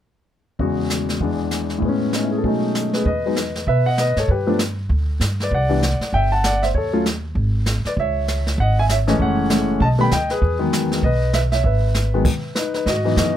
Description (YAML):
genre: jazz piano trio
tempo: 196 BPM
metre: 4/4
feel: swing 60% on 8ths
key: E major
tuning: A4 = 440 Hz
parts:
  - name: warm concert grand piano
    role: melody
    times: 0.6-13.4 s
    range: E2 to B5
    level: -20 LUFS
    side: left 1 dB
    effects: none
  - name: jazz brush drum kit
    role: drums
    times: 0.6-13.4 s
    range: brushed snare drum, crash cymbal, hi-hat, kick drum, snare drum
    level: -25 LUFS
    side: right 1 dB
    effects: none
  - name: upright bass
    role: bass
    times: 3.1-13.4 s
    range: F#1 to B2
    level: -20 LUFS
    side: equal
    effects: none
room: little or no reverb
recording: close, detailed microphones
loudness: -17 LUFS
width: side -11 dB against mid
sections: 0.6-3.1 A section; 3.1-12.9 B section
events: stop 12.3-12.9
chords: 0.6 E69; 1.2 E7; 1.8 Amaj9; 2.4 B13; 3.1 Emaj7(no3); 4.3 G; 5.5 Cadd9; 6.7 D#7(b5, no3); 7.4 N.C.; 8.0 C#m; 9.2 F#m7; 9.8 Baug; 10.4 Emaj9; 12.9 C#m11 (rootless)